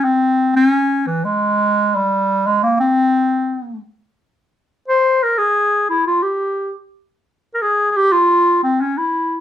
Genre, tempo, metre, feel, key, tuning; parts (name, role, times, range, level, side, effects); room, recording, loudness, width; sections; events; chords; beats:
klezmer; 87 BPM; 2/4; straight; C phrygian dominant; A4 = 440 Hz
warm clarinet; solo; 0.0-9.4 s; E3 to C5; -14 LUFS; equal
wet studio reverb, RT60 0.5 s; heard from further back in the room; -14 LUFS; side -10 dB against mid
0.0-4.2 A section; 4.2-9.4 B section
| 0.04 0.73 | 1.42 2.11 | 2.80 3.49 | 4.18 4.87 | 5.55 6.24 | 6.92 7.61 | 8.29 8.97